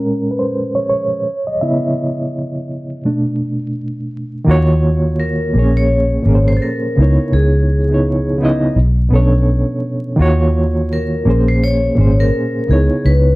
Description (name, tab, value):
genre	hip hop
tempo	84 BPM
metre	4/4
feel	swing 60% on 16ths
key	unclear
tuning	A4 = 440 Hz
part	reed electric piano	accompaniment	0.0-13.4 s	Bb2 to Fb5	-16 LUFS	right 1 dB	fast tremolo, low-pass filter
part	vintage muted fingered electric bass	bass	4.5-13.4 s	Ab1 to Eb2	-14 LUFS	equal	none
part	vibraphone with medium hard mallets	melody	5.2-13.4 s	Ab4 to Db5	-20 LUFS	left 2 dB	low-pass filter
room	light reverb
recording	dark, warm production, vinyl crackle, low-pass filter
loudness	-13 LUFS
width	side -21 dB against mid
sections	0.0-4.5 A section; 4.5-13.4 B section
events	reed electric piano solo 0.0-4.5; filter sweep 0.0-4.5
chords	0.0 Bbm7; 1.3 Dbm7; 3.0 Bm7; 4.5 Ebm7; 5.5 Bbm7; 7.0 Dbm7; 8.8 Bm7; 10.2 Ebm7; 11.3 Bbm7; 12.7 Dbm7